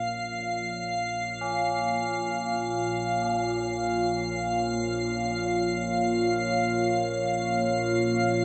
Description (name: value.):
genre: dark ambient drone.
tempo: free time.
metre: none.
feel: none.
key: Bb minor.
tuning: A4 = 439 Hz.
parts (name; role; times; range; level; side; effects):
dark analog pad; sustained chords; 0.0-8.4 s; Bb3 to F5; -31 LUFS; equal; chorus, phaser.
organ-like drone; drone; 0.0-8.4 s; Bb1 to Bb2; -38 LUFS; equal; ensemble chorus, built-in reverb, phaser.
icy glass pad; texture; 0.0-8.4 s; F5; -31 LUFS; equal; chorus, built-in reverb, shimmer reverb.
tubular bells; arpeggios; 1.4-8.4 s; Db4; -38 LUFS; equal; analog delay, shimmer reverb.
room: wet spring reverb, RT60 2.7 s.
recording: echo-heavy mix.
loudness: -27 LUFS.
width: mono.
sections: 0.0-8.4 A section.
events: fade-in on synth drone 0.0-8.4.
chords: 0.0 Bbm.